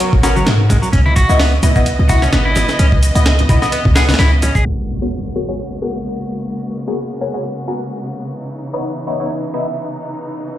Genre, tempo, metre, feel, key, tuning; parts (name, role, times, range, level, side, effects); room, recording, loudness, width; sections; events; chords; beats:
breakbeat, breaks; 129 BPM; 4/4; swing 56% on 16ths; G# minor; A4 = 440 Hz
rich studio string section; sustained chords; 0.0-10.6 s; C#3 to D#5; -24 LUFS; equal; vintage 12-bit sampler grit, sidechain pumping, low-pass filter
clean electric guitar; riff; 0.0-4.7 s; F#3 to G#4; -20 LUFS; right 1 dB; vintage 12-bit sampler grit, dub echo
breakbeat sampler-style drum kit; drums; 0.0-4.7 s; hi-hat, kick drum, snare drum; -16 LUFS; equal; studio reverb
shaker; drums; 0.0-10.6 s; -30 LUFS; left 1 dB; studio reverb
warm 808-style bass; bass; 0.1-4.5 s; G#1 to G#2; -13 LUFS; equal; tube saturation
bongos and congas; percussion; 0.1-4.5 s; -24 LUFS; left 2 dB
band-passed chord stab; stabs; 0.2-9.7 s; B3 to F#5; -21 LUFS; left 2 dB; phaser, dub echo
impact; sound effects; 4.7-6.5 s; -24 LUFS; equal
light reverb; played on a big sound system in a bare room, stone room reverb, low-pass filter; -13 LUFS; side -13 dB against mid
0.0-4.7 A section; 4.7-10.6 B section
impact 4.7-6.5; filter sweep on synth stab 4.7-10.6; filter sweep 4.7-10.6
0.0 G#m11; 0.9 C#m9; 4.7 G#m11; 8.4 C#m9
0.01 0.47 | 0.94 1.40 1.86 2.33 | 2.79 3.26 3.73 4.19 | 4.66 5.12 5.59 6.05 | 6.52 6.98 7.45 7.91 | 8.38 8.84 9.31 9.77 | 10.24